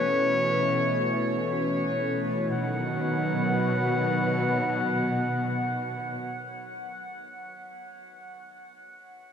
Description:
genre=ambient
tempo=61 BPM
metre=3/4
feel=straight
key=B mixolydian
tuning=A4 = 439 Hz
part: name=clear clarinet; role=melody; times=0.0-6.2 s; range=C#5 to F#5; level=-29 LUFS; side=left 2 dB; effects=diffuse ambient delay
part: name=warm analog pad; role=sustained chords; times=0.0-6.2 s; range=D#3 to B4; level=-29 LUFS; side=equal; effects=chorus
part: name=rich symphonic cello section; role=bass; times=0.0-6.2 s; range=B2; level=-31 LUFS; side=equal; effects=none
part: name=clear studio violin section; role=texture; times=0.0-2.5 s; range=G#5 to G#6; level=-60 LUFS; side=equal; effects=none
part: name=worn celesta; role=arpeggios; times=0.5-8.0 s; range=none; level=barely audible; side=none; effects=none
room=wet huge ambient reverb, RT60 7.6 s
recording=dreamy mix soaked in reverb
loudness=-24 LUFS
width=side -7 dB against mid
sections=0.0-2.5 A section; 2.5-5.5 B section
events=filter sweep on analog synth pad 0.0-2.5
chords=0.0 B9sus4; 2.5 B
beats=0.54 1.52 | 2.50 3.49 4.47

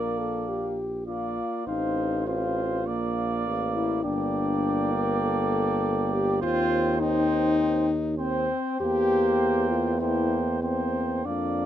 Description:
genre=classical, brass quintet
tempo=101 BPM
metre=4/4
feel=rubato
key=unclear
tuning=A4 = 440 Hz
part: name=dark trumpet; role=melody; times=0.0-11.7 s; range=F5 to G5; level=-33 LUFS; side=left 7 dB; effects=none
part: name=clear flugelhorn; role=second line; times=0.0-11.7 s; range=C5 to D5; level=-32 LUFS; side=right 8 dB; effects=none
part: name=clear trombone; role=accompaniment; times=0.0-11.7 s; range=Bb3 to C4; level=-33 LUFS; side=right 4 dB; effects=none
part: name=mellow French horn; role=accompaniment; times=0.0-11.7 s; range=C4 to Bb4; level=-27 LUFS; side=left 3 dB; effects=none
part: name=clear bass trombone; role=bass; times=0.0-11.7 s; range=G1 to F2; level=-29 LUFS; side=right 2 dB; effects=none
room=little or no reverb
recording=close, detailed microphones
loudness=-23 LUFS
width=side -11 dB against mid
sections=0.0-11.7 A section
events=none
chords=0.0 Bb; 1.7 F7/A; 2.9 Bb; 4.0 Gm; 6.4 Cm/Eb; 8.8 C7/E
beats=0.49 1.08 | 1.68 2.27 2.87 3.46 | 4.04 4.64 5.23 5.83 | 6.42 7.01 7.59 8.19 | 8.81 9.41 10.01 10.62 | 11.26

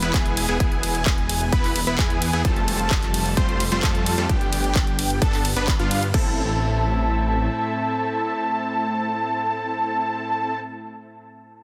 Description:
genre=EDM, festival progressive house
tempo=130 BPM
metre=4/4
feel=straight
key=A minor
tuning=A4 = 440 Hz
part: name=lush unison pad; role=sustained chords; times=0.0-10.6 s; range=A2 to E5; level=-32 LUFS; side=equal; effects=chorus, sidechain pumping
part: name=unison lead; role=arpeggios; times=0.0-10.6 s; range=F5 to C6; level=-29 LUFS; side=equal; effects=cassette tape, sidechain pumping, dub echo
part: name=supersaw stab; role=riff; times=0.0-10.6 s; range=G3 to C5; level=-31 LUFS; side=equal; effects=vintage 12-bit sampler grit, sidechain pumping, dub echo
part: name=detuned saw bass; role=bass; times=0.0-7.5 s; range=E1 to G2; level=-28 LUFS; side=equal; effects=tube saturation, sidechain pumping
part: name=big-room dance drum kit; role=drums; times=0.0-6.2 s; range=crash cymbal, handclaps, hi-hat, ride cymbal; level=-30 LUFS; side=equal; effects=none
part: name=electronic kick drum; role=drums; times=0.1-6.2 s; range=none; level=-24 LUFS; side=equal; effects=none
room=light reverb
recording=dense, heavily limited modern master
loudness=-22 LUFS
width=mono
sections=0.0-6.1 A section; 6.1-9.8 B section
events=drop 0.0-6.1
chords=0.0 E; 2.4 Fadd9; 4.3 G; 6.1 Am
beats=0.14 | 0.60 1.06 1.52 1.99 | 2.45 2.91 3.37 3.83 | 4.29 4.76 5.22 5.68 | 6.14 6.60 7.06 7.53 | 7.99 8.45 8.91 9.37

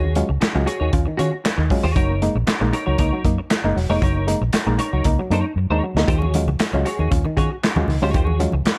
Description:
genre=funk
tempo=116 BPM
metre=4/4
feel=straight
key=Eb minor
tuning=A4 = 442 Hz
part: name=clean electric guitar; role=accompaniment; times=0.0-8.7 s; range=Eb4 to Db5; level=-28 LUFS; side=equal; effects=ensemble chorus
part: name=muted clav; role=stabs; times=0.0-8.6 s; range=Eb3 to F4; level=-26 LUFS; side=equal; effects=none
part: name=vintage muted fingered electric bass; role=bass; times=0.0-8.7 s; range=Fb1 to Eb3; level=-24 LUFS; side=equal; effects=none
part: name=crunchy breakbeat drum kit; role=drums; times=0.2-8.8 s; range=handclaps, hi-hat, kick drum, snare drum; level=-24 LUFS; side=equal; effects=none
part: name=congas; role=percussion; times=6.1-8.6 s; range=none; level=-32 LUFS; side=equal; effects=none
room=little or no reverb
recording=none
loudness=-20 LUFS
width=mono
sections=0.0-8.8 A section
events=drum fill 5.6-6.1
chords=0.0 Ebm11; 2.0 Gb6; 6.1 Ebm11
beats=0.41 0.93 1.45 | 1.96 2.48 2.99 3.51 | 4.02 4.54 5.05 5.57 | 6.08 6.60 7.11 7.63 | 8.14 8.66

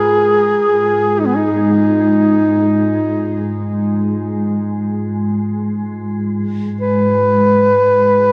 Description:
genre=world meditative, free-time meditation music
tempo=free time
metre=none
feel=none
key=Ab kumoi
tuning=A4 = 440 Hz
part: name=dark duduk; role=melody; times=0.0-8.3 s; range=Cb4 to Cb5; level=-16 LUFS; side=equal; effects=none
part: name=glassy FM pad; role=drone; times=0.0-8.3 s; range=Ab2 to Ab3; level=-20 LUFS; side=equal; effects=ensemble chorus, built-in reverb
part: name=quartz singing bowl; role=texture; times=0.0-4.3 s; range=F4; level=-30 LUFS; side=equal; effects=none
room=wet huge ambient reverb, RT60 7.4 s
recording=worn, warbling old tape, cassette tape, warbly pitch drift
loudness=-15 LUFS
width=mono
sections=0.0-8.3 A section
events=none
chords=none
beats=free time

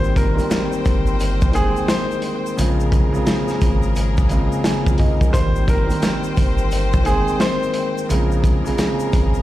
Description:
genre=hip hop, boom-bap hip-hop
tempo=87 BPM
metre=4/4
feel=swing 63% on 16ths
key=Ab major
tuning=A4 = 440 Hz
part: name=bright upright piano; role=melody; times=0.0-7.7 s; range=Ab4 to C5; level=-26 LUFS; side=equal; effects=analog delay
part: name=dark baby grand piano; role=accompaniment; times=0.0-9.4 s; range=Db3 to Ab5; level=-22 LUFS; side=equal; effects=cassette tape
part: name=rich studio string section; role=sustained chords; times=0.0-9.4 s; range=Bb3 to G5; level=-28 LUFS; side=left 3 dB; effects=none
part: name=saturated sub bass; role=bass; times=0.0-9.4 s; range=G1 to Bb1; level=-20 LUFS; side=equal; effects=none
part: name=tube shaker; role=percussion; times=0.0-9.4 s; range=none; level=-41 LUFS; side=left 7 dB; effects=none
part: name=crunchy breakbeat drum kit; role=drums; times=0.2-9.3 s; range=hi-hat, kick drum, snare drum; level=-20 LUFS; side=equal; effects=none
room=small room ambience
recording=played on a big sound system in a bare room, large studio reverb, faint mains hum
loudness=-16 LUFS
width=side -14 dB against mid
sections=0.0-9.4 A section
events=none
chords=0.0 Abmaj7; 2.6 Bbm7; 5.3 Abmaj7; 8.1 Bbm7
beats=0.51 1.20 1.89 | 2.58 3.27 3.96 4.65 | 5.34 6.03 6.72 7.41 | 8.10 8.79

